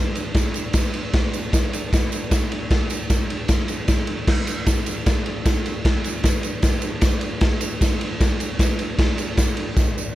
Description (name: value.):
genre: rock.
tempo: 153 BPM.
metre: 4/4.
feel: straight.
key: none.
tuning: none.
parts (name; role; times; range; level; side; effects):
raw garage drum kit; drums; 0.2-9.9 s; crash cymbal, kick drum, ride cymbal, snare drum; -19 LUFS; equal; none.
tambourine; percussion; 0.2-10.1 s; none; -35 LUFS; right 7 dB; none.
room: little or no reverb.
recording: none.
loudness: -19 LUFS.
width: side -15 dB against mid.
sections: 0.0-10.2 A section.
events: drum fill 9.8-10.2.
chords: none.